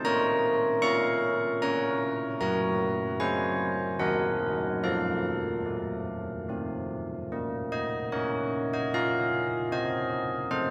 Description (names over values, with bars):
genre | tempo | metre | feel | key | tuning
classical, tune for church bells | 75 BPM | 3/4 | straight | Bb minor | A4 = 442 Hz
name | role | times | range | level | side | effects
carillon bells | solo | 0.0-10.7 s | Eb3 to Db6 | -29 LUFS | equal | none
room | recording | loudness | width
wet cathedral reverb, RT60 5.5 s | none | -29 LUFS | mono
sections
0.0-7.3 A section; 7.3-10.7 B section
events
none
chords
0.0 Bbm; 2.4 Gb; 4.0 Ebm; 4.8 F; 7.3 Bbm; 9.7 F7/C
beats
| 0.04 0.83 1.62 | 2.41 3.20 4.01 | 4.83 5.66 6.48 | 7.30 8.12 8.92 | 9.72 10.52